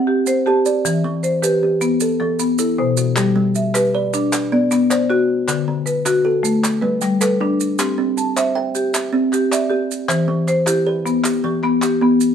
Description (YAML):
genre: southern african traditional, mbira-style interlocking cycle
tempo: 104 BPM (dotted quarters)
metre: 12/8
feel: straight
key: G major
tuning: A4 = 440 Hz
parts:
  - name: kalimba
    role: arpeggios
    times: 0.0-12.3 s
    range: B2 to G5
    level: -21 LUFS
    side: right 4 dB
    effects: none
  - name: marimba with medium hard mallets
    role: arpeggios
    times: 0.0-12.3 s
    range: B2 to A5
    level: -17 LUFS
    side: left 2 dB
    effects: none
  - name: maracas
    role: percussion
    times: 0.3-12.3 s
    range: none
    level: -26 LUFS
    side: right 8 dB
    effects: none
  - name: group handclap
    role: percussion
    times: 3.2-12.0 s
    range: none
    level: -26 LUFS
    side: left 1 dB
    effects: none
room: light reverb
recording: band playing live in one room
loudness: -15 LUFS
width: side -8 dB against mid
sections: 0.0-3.2 A section; 3.2-12.3 B section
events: none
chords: 0.0 C5; 0.8 Em; 3.2 G; 4.3 Bm; 5.5 D; 6.6 G; 7.8 C; 10.1 Em